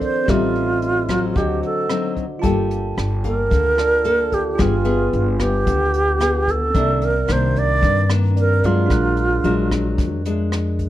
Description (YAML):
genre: bossa nova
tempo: 111 BPM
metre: 4/4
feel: straight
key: unclear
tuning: A4 = 439 Hz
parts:
  - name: alto flute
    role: melody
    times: 0.0-10.3 s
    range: F4 to D5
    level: -20 LUFS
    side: right 3 dB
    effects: none
  - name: bell-like tine electric piano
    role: accompaniment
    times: 0.0-10.9 s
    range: C4 to Gb6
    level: -28 LUFS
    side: right 5 dB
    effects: none
  - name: nylon-string guitar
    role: accompaniment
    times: 0.0-10.9 s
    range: G2 to C5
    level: -23 LUFS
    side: left 4 dB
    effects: none
  - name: jazz brush drum kit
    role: drums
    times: 0.0-10.9 s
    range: hi-hat, kick drum, rim click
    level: -25 LUFS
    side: equal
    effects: none
  - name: upright bass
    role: bass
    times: 0.3-10.9 s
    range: G1 to G2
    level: -21 LUFS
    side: equal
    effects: none
room: light reverb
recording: dark, warm production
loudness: -16 LUFS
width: side -13 dB against mid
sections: 0.0-2.4 A section; 2.4-10.9 B section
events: none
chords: 0.3 Am7b5; 1.4 D7b9; 2.4 Gm9; 4.6 G7b9; 6.7 Cm9; 8.9 Bb7b13